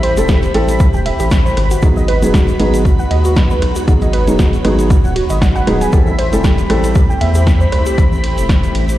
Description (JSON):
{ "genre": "deep house", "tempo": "117 BPM", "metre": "4/4", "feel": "swing 55% on 16ths", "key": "unclear", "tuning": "A4 = 441 Hz", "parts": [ { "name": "soft string machine", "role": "sustained chords", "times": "0.0-9.0 s", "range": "G#3 to C#5", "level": "-23 LUFS", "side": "left 1 dB", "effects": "ensemble chorus, vintage 12-bit sampler grit, sidechain pumping" }, { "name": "warbly dusty pluck", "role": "arpeggios", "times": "0.0-7.9 s", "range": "F#4 to G#5", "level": "-21 LUFS", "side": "right 2 dB", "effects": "chorus, sidechain pumping, tape echo" }, { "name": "rubbery square bass", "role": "bass", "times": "0.0-9.0 s", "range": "D#1 to E2", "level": "-17 LUFS", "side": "equal", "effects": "sidechain pumping" }, { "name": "punchy analog drum machine", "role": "drums", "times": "0.0-9.0 s", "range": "hi-hat, ride cymbal, rim click, snare drum", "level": "-23 LUFS", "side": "equal", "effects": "overdrive" }, { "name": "analog string pad", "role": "texture", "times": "0.0-9.0 s", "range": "B5", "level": "-26 LUFS", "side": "equal", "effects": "ensemble chorus" }, { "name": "felt-muted upright piano", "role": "stabs", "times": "0.2-6.9 s", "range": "F#3 to A4", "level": "-18 LUFS", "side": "equal", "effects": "vintage 12-bit sampler grit, sidechain pumping, analog delay" }, { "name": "egg shaker", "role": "percussion", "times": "0.2-9.0 s", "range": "none", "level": "-34 LUFS", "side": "left 1 dB", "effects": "none" }, { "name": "electronic kick drum", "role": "drums", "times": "0.3-8.6 s", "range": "none", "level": "-13 LUFS", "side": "equal", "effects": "overdrive" } ], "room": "light reverb, digital ambience", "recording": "played on a big sound system in a bare room, cassette tape, large studio reverb", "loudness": "-10 LUFS", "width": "side -14 dB against mid", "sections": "0.0-9.0 A section", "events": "none", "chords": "0.0 Am7; 1.6 G#m7; 5.9 Am7" }